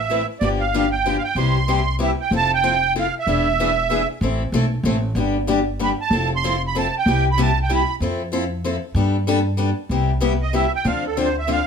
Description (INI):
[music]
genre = acoustic string swing (jazz manouche)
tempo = 190 BPM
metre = 3/4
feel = swing 60% on 8ths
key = C major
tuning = A4 = 440 Hz
[part]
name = musette accordion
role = melody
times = 0.0-8.0, 10.4-11.7 s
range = A4 to C6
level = -21 LUFS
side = right 5 dB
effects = none
[part]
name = upright bass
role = bass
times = 0.0-11.6 s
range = E1 to G2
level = -22 LUFS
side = equal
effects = none
[part]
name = picked steel-string acoustic guitar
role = accompaniment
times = 0.1-11.6 s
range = C3 to B4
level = -22 LUFS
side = left 3 dB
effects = none
[sound]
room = moderate studio reverb, RT60 0.7 s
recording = none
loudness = -18 LUFS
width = side -6 dB against mid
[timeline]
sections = 0.0-2.3 A section; 2.3-9.9 B section; 9.9-11.7 C section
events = accordion solo 9.9-11.7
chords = 0.4 G7; 1.4 Cmaj7; 2.3 Fmaj7; 3.3 E7; 4.2 Am; 5.2 G; 6.1 Fmaj7; 7.1 Cmaj7; 8.0 Fmaj7; 9.0 Gadd9; 9.9 Cmaj7; 10.8 Dm7